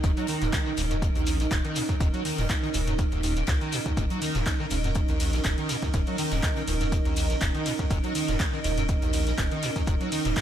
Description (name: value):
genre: acid house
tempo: 122 BPM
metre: 4/4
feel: swing 54% on 16ths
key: Eb minor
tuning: A4 = 438 Hz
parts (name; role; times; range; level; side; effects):
- dark analog pad; sustained chords; 0.0-10.4 s; Eb4; -33 LUFS; right 7 dB; chorus, sidechain pumping
- liquid acid bass; riff; 0.0-10.4 s; Eb1 to Gb3; -30 LUFS; equal; tube saturation, ensemble chorus, vintage 12-bit sampler grit, analog delay
- saturated sub bass; bass; 0.0-10.3 s; Eb1 to Db2; -29 LUFS; equal; sidechain pumping
- booming analog drum machine; drums; 0.0-10.4 s; handclaps, hi-hat, ride cymbal; -34 LUFS; equal; none
- electronic kick drum; drums; 0.0-10.4 s; none; -27 LUFS; equal; overdrive
- modern studio drum kit; drums; 0.0-10.4 s; hi-hat, snare drum; -43 LUFS; left 5 dB; none
- shekere; percussion; 0.0-10.4 s; none; -39 LUFS; left 2 dB; none
- granular cloud pad; texture; 0.0-10.4 s; Db4 to Eb5; -35 LUFS; left 1 dB; built-in reverb, sidechain pumping
room: light reverb, small room ambience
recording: none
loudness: -24 LUFS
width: side -10 dB against mid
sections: 0.0-10.4 A section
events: none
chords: 0.0 Ebm7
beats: | 0.04 0.53 1.02 1.51 | 2.00 2.50 2.99 3.48 | 3.97 4.46 4.96 5.45 | 5.94 6.43 6.92 7.42 | 7.91 8.40 8.89 9.38 | 9.87 10.37